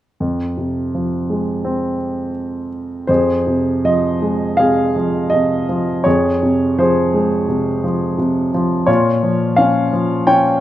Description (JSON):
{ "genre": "classical, lyrical solo piano", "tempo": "83 BPM", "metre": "4/4", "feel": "uneven beats, rubato", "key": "F minor", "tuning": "A4 = 440 Hz", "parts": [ { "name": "warm grand piano", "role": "solo", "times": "0.2-10.6 s", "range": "F2 to G5", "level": "-14 LUFS", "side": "equal", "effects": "none" } ], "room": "light reverb", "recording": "minimal, uncompressed stereo recording", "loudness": "-15 LUFS", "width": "side -13 dB against mid", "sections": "0.2-3.1 A section; 3.1-10.6 B section", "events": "none", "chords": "0.2 Fm; 8.9 Bbm", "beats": "| 0.22 0.94 1.64 2.35 | 3.09 3.85 4.59 5.32 | 6.06 6.78 7.49 8.19 | 8.88 9.58 10.28" }